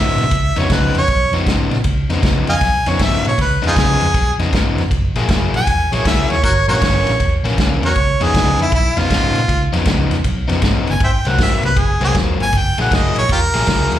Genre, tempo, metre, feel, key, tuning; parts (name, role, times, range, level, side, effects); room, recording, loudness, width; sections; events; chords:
electric blues shuffle; 157 BPM; 4/4; swing 65% on 8ths; Db mixolydian; A4 = 441 Hz
clear harmonica; melody; 0.0-14.0 s; Eb4 to Ab5; -18 LUFS; right 1 dB; slapback echo
crunchy overdriven guitar; riff; 0.0-14.0 s; G2 to Ab4; -21 LUFS; left 5 dB; slapback echo
vintage muted fingered electric bass; bass; 0.0-14.0 s; Fb1 to Bb2; -18 LUFS; right 1 dB
vintage drum kit; drums; 0.2-14.0 s; kick drum, ride cymbal, snare drum; -19 LUFS; equal
light reverb, small room reverb; live gig heard through the venue's PA, club reverb; -13 LUFS; side -12 dB against mid
0.0-14.0 A section
0.0 Db9; 4.9 Gb9; 6.4 Gdim7; 8.0 Db9; 11.0 Ab9; 12.5 Gb9